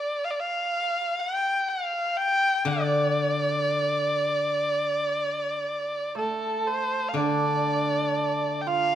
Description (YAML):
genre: chinese traditional, Chinese chamber ensemble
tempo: 61 BPM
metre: 4/4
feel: rubato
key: D yu mode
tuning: A4 = 440 Hz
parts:
  - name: warm erhu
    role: melody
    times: 0.0-8.9 s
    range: A4 to G5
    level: -25 LUFS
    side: equal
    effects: none
  - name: steel-string zither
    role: accompaniment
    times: 2.6-8.9 s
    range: D3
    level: -29 LUFS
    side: left 2 dB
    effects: none
  - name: hammered dulcimer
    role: second line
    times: 6.2-8.9 s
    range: A3 to F4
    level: -27 LUFS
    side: right 4 dB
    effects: none
room: moderate recital hall reverb, RT60 1.7 s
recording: minimal, uncompressed stereo recording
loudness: -24 LUFS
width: side -10 dB against mid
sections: 0.0-7.2 A section; 7.2-8.9 B section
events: none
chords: none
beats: 0.22 1.20 2.17 | 3.15 4.13 5.13 6.15 | 7.17 8.17